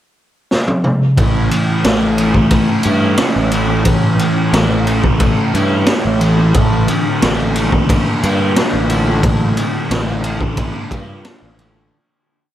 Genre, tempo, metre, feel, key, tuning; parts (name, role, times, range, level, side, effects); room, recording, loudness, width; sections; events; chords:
psychedelic rock; 89 BPM; 4/4; straight; A phrygian dominant; A4 = 439 Hz
raw garage drum kit; drums; 0.5-11.7 s; kick drum, ride cymbal, snare drum, toms; -16 LUFS; equal; analog delay
thick fuzz guitar; riff; 1.2-11.9 s; A2 to F4; -16 LUFS; equal; distortion, phaser, analog delay
fuzz picked electric bass; bass; 1.2-11.9 s; A1 to G2; -17 LUFS; equal; overdrive
light reverb, small room ambience; echo-heavy mix; -12 LUFS; side -12 dB against mid
0.0-1.2 pickup bar; 1.2-11.9 groove
drum fill 0.5-1.2; fade-out 9.2-11.9
0.0 N.C.; 1.2 A; 6.5 Bb/A